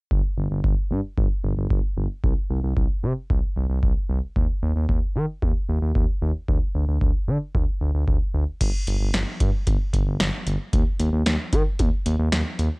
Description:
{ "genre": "synth-pop", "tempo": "113 BPM", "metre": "4/4", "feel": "straight", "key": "unclear", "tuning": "A4 = 440 Hz", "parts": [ { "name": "smooth gliding synth bass", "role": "bass", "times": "0.1-12.7 s", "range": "G1 to Eb3", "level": "-23 LUFS", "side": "equal", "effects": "none" }, { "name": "electro analog drum machine", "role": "drums", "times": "0.1-12.7 s", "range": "crash cymbal, hi-hat, kick drum, snare drum", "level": "-23 LUFS", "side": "equal", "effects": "none" } ], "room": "little or no reverb", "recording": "dry, gritty hardware recording, cassette tape", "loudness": "-21 LUFS", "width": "side -34 dB against mid", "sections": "0.1-8.6 A section; 8.6-12.8 B section", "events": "none", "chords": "none" }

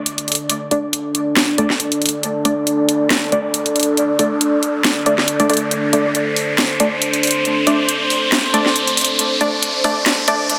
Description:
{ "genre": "deep dubstep", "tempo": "138 BPM", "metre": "4/4", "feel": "swing 55% on 16ths, half-time", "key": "unclear", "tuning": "A4 = 440 Hz", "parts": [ { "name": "deep dark ambient pad", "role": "sustained chords", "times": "0.2-10.6 s", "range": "D4 to D5", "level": "-22 LUFS", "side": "equal", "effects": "chorus, built-in reverb" }, { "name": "riser", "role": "sound effects", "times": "2.0-10.6 s", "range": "none", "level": "-25 LUFS", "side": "equal", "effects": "none" }, { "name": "garage drum kit", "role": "drums", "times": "0.1-10.6 s", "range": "hi-hat, snare drum", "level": "-20 LUFS", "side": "equal", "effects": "none" }, { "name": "filtered dub chord stab", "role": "stabs", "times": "0.7-10.4 s", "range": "A3 to D5", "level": "-23 LUFS", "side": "equal", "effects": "chorus, dub echo" } ], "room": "wet spring reverb, RT60 2.3 s", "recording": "dense, heavily limited modern master, high-pass filter", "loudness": "-17 LUFS", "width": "mono", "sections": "0.0-10.6 A section", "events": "build-up 0.0-10.6; riser 2.0-10.6", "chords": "0.0 D5" }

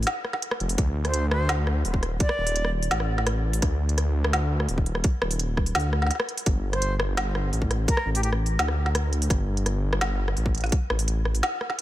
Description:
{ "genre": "half-time drum and bass", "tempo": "169 BPM", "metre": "4/4", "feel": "half-time", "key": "unclear", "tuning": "A4 = 439 Hz", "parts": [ { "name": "dark detuned saw bass", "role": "bass", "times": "0.0-11.4 s", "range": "Eb1 to D2", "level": "-25 LUFS", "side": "equal", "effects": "none" }, { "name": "organic electronic drum kit", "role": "drums", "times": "0.0-11.8 s", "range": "hi-hat, rim click, snare drum", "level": "-28 LUFS", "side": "equal", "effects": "none" }, { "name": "electronic kick drum", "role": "drums", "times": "0.8-10.8 s", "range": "none", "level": "-24 LUFS", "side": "equal", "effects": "overdrive" }, { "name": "bright silver concert flute", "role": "melody", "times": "1.0-2.7, 6.7-8.3 s", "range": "G4 to D5", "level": "-32 LUFS", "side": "equal", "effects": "dub echo" } ], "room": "digital ambience", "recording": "none", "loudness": "-22 LUFS", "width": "side -14 dB against mid", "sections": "0.0-11.8 A section", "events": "break 6.1-6.5", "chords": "0.0 N.C.; 0.8 D5; 6.5 G5" }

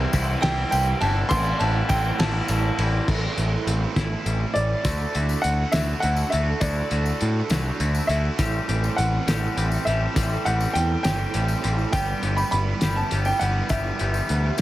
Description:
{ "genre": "indie rock", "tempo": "68 BPM (dotted quarters)", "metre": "6/8", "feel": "straight", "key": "A dorian", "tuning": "A4 = 438 Hz", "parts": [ { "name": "fuzz guitar", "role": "riff", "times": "0.0-14.6 s", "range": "A2 to A4", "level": "-30 LUFS", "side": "right 8 dB", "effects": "distortion, ensemble chorus" }, { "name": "twangy electric guitar", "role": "riff", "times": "0.0-14.6 s", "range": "G2 to G4", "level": "-30 LUFS", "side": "left 5 dB", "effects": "none" }, { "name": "growling picked electric bass", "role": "bass", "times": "0.0-14.6 s", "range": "G1 to A2", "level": "-24 LUFS", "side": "equal", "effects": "overdrive" }, { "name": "cloth-damped thuddy drum kit", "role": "drums", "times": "0.1-14.6 s", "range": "crash cymbal, hi-hat, kick drum, ride cymbal, snare drum", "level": "-27 LUFS", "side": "equal", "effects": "none" }, { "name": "tambourine", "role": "percussion", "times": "0.1-14.6 s", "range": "none", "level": "-39 LUFS", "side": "left 6 dB", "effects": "none" }, { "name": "warm upright piano", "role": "melody", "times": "0.4-14.5 s", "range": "D5 to C6", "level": "-27 LUFS", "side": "right 1 dB", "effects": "tape echo" }, { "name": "glockenspiel with brass mallets", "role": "second line", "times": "0.4-2.8 s", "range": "E6 to A6", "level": "-39 LUFS", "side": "right 3 dB", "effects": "none" } ], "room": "light reverb", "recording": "heavily compressed radio sound", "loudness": "-20 LUFS", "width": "side -15 dB against mid", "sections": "0.0-3.1 A section; 3.1-4.8 B section; 4.8-14.6 C section", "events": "none", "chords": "0.0 C; 1.3 Am7; 4.8 Dadd9; 8.4 Am7; 11.9 Em7/G" }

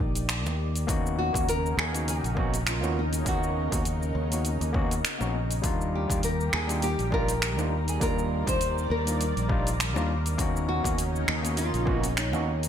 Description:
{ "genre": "sunset chillout", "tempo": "101 BPM", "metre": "4/4", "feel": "swing 55% on 16ths", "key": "unclear", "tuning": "A4 = 440 Hz", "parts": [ { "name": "nylon-string guitar", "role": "melody", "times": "0.0-12.7 s", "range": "Eb4 to C5", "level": "-32 LUFS", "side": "left 1 dB", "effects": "ping-pong delay, shimmer reverb" }, { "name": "lush unison pad", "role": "sustained chords", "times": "0.0-12.7 s", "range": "C#3 to D5", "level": "-34 LUFS", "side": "equal", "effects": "chorus, phaser, shimmer reverb" }, { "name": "fingered electric bass", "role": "bass", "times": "0.0-12.7 s", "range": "Bb1 to Eb2", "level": "-29 LUFS", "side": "equal", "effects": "none" }, { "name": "deep house drum kit", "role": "drums", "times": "0.2-12.7 s", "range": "finger snaps, hi-hat, shaker", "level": "-32 LUFS", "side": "right 1 dB", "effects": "overdrive, gated reverb" }, { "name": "bongos", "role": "percussion", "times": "0.5-12.4 s", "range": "none", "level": "-41 LUFS", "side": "right 2 dB", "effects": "none" }, { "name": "overdriven tine electric piano", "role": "accompaniment", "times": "0.9-12.5 s", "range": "G3 to F#4", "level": "-33 LUFS", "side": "moving between left 5 dB and right 6 dB", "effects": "auto-pan, vintage 12-bit sampler grit, ping-pong delay, shimmer reverb" }, { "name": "electronic kick drum", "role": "drums", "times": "0.9-12.0 s", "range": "none", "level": "-30 LUFS", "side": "equal", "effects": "overdrive" } ], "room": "moderate plate reverb, RT60 1.9 s", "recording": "bright 1980s-style digital production", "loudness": "-24 LUFS", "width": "side -9 dB against mid", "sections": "0.0-12.7 A section", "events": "none", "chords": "0.0 Ebmaj7; 0.9 Bmaj9; 5.6 Ebmaj7; 10.4 Bmaj9/D#" }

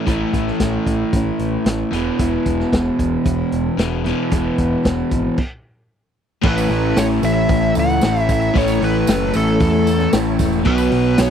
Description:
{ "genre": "classic rock", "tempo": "113 BPM", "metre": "4/4", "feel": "straight", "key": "unclear", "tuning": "A4 = 441 Hz", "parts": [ { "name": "picked old ladder-braced acoustic guitar", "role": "accompaniment", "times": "0.0-11.3 s", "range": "E2 to F#4", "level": "-27 LUFS", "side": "left 5 dB", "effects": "none" }, { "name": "overdriven electric guitar", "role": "riff", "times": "0.0-11.3 s", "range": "E2 to B3", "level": "-22 LUFS", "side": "left 10 dB", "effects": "none" }, { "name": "raw garage guitar", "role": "riff", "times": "0.0-11.3 s", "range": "E2 to B3", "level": "-21 LUFS", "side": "right 12 dB", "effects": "overdrive" }, { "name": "growling picked electric bass", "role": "bass", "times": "0.1-11.3 s", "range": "E1 to E2", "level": "-22 LUFS", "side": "equal", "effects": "overdrive" }, { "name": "vintage drum kit", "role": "drums", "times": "0.1-11.3 s", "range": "crash cymbal, hi-hat, kick drum, snare drum", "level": "-20 LUFS", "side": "equal", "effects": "none" }, { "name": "tonewheel organ", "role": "sustained chords", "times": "6.4-11.3 s", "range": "B3 to C#5", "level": "-32 LUFS", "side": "equal", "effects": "none" }, { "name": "nasal lead guitar with a parked wah", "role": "melody", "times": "6.5-11.3 s", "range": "A4 to F#5", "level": "-21 LUFS", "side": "equal", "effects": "overdrive, slapback echo" }, { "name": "tambourine", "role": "percussion", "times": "6.6-11.3 s", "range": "none", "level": "-36 LUFS", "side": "right 11 dB", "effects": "none" } ], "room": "light reverb", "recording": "dry, close 1970s-style studio recording", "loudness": "-15 LUFS", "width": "side -8 dB against mid", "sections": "0.0-6.4 A section; 6.4-11.3 B section", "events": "stop 5.4-6.4", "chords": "0.0 A; 1.9 E; 6.4 A; 10.7 B" }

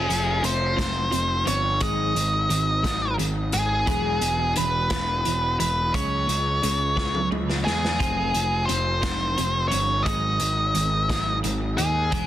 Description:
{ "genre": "quiet-loud alternative rock", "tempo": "58 BPM (dotted quarters)", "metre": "6/8", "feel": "straight", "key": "unclear", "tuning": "A4 = 443 Hz", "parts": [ { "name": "octave-fuzz lead guitar", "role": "melody", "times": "0.0-12.3 s", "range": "Ab4 to Eb5", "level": "-24 LUFS", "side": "equal", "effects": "distortion, digital delay" }, { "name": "twelve-string electric guitar", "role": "arpeggios", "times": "0.0-12.3 s", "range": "E2 to F4", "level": "-30 LUFS", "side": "right 1 dB", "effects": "wide subtle chorus, digital delay" }, { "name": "fuzz picked electric bass", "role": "bass", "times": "0.0-12.3 s", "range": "E1 to Fb2", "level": "-26 LUFS", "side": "equal", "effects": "overdrive" }, { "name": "raw garage drum kit", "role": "drums", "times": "0.1-12.3 s", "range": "hi-hat, kick drum, snare drum, toms", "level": "-28 LUFS", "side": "equal", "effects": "none" } ], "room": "small room ambience", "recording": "dense, heavily limited modern master", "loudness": "-21 LUFS", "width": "side -12 dB against mid", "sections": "0.0-12.3 A section", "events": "drum fill 7.0-8.0", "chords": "0.0 Fm; 1.8 Ab5; 3.9 E; 5.9 Dbm; 8.0 Fm; 10.1 Ab5" }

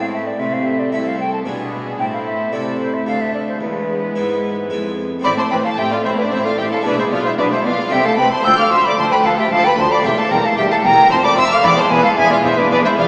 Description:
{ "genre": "classical, baroque-style concerto movement with solo episodes", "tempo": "112 BPM", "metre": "3/4", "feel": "straight", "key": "A minor", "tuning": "A4 = 438 Hz", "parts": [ { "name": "rich chamber violin section", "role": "melody", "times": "0.0-13.1 s", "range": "E4 to G6", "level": "-22 LUFS", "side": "equal", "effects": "none" }, { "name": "silver concert flute", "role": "melody", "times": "0.0-13.1 s", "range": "B4 to E6", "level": "-17 LUFS", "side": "equal", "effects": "none" }, { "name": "rich chamber violin section", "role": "second line", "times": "0.0-13.1 s", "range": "B3 to G5", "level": "-20 LUFS", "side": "equal", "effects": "none" }, { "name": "harpsichord", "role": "accompaniment", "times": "0.0-13.1 s", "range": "C2 to A4", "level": "-25 LUFS", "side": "equal", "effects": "none" }, { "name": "rich symphonic viola section", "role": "accompaniment", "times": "0.0-13.1 s", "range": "F3 to C4", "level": "-23 LUFS", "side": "equal", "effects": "none" }, { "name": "rich chamber cello section", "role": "bass", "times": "0.0-13.1 s", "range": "C2 to C3", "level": "-25 LUFS", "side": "equal", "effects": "none" }, { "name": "clear chamber double bass section", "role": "bass", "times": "5.2-13.1 s", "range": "E1 to D2", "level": "-30 LUFS", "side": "equal", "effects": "none" } ], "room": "wet church reverb, RT60 3.1 s", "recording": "recorded in a church or concert hall, small speaker sound", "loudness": "-13 LUFS", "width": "side -34 dB against mid", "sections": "0.0-5.2 A section; 5.2-13.1 B section", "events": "none", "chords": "0.4 Am/C; 1.5 G#dim/B; 2.0 Am; 3.1 D5; 3.6 E; 5.2 Am; 6.9 E/B; 7.9 Am/C; 8.5 Dm; 10.0 A7/E; 11.1 Dm/F; 11.6 E" }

